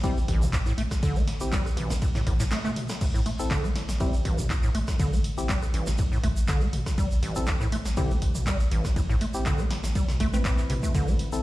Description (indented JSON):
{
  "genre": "acid house",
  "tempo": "121 BPM",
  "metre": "4/4",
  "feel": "swing 53% on 16ths",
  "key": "A minor",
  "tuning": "A4 = 437 Hz",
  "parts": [
    { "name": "acid bass, square", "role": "riff", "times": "0.0-11.1 s", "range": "A1 to C4", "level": "-31 LUFS", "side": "equal", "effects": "overdrive, analog chorus, digital delay" },
    { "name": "percussive organ stab", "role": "stabs", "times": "0.0-11.4 s", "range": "C4 to B4", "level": "-34 LUFS", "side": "left 2 dB", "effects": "chorus, digital delay" },
    { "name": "warm sub bass", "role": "bass", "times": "0.0-11.4 s", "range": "A1", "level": "-30 LUFS", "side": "equal", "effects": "sidechain pumping" },
    { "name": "electronic kick drum", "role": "drums", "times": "0.0-11.1 s", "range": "none", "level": "-26 LUFS", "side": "equal", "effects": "none" },
    { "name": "punchy analog drum machine", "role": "drums", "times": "0.0-11.3 s", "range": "crash cymbal, handclaps, hi-hat, ride cymbal, rim click, snare drum, toms", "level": "-33 LUFS", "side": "equal", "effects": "none" },
    { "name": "tube shaker", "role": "percussion", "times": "0.0-11.4 s", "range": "none", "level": "-41 LUFS", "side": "right 4 dB", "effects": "none" }
  ],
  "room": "light reverb",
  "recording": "played on a big sound system in a bare room, large studio reverb",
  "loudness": "-23 LUFS",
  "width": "side -17 dB against mid",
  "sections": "0.0-11.4 A section",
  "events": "drum fill 2.3-3.0; break 2.5-3.0",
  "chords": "0.0 Am"
}